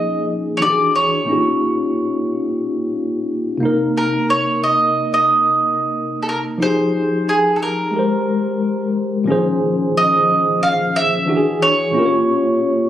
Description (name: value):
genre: R&B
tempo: 90 BPM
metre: 4/4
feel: swing 54% on 16ths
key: Bb dorian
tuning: A4 = 440 Hz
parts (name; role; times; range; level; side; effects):
- mandolin; melody; 0.0-12.9 s; Ab4 to F5; -17 LUFS; right 2 dB; slapback echo
- tine electric piano; accompaniment; 0.0-12.9 s; Bb2 to Db5; -18 LUFS; left 1 dB; medium stereo tremolo
room: light reverb, small room reverb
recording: recorded on a phone in the room, club reverb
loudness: -15 LUFS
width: side -11 dB against mid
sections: 0.0-9.3 A section; 9.3-12.9 B section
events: none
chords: 0.0 Bbm7; 0.6 E9; 1.3 Eb9/Bb; 3.6 Cm7; 6.6 Fm9; 7.9 Abmaj9; 9.3 Bbm11; 11.3 E9; 11.9 Bbm6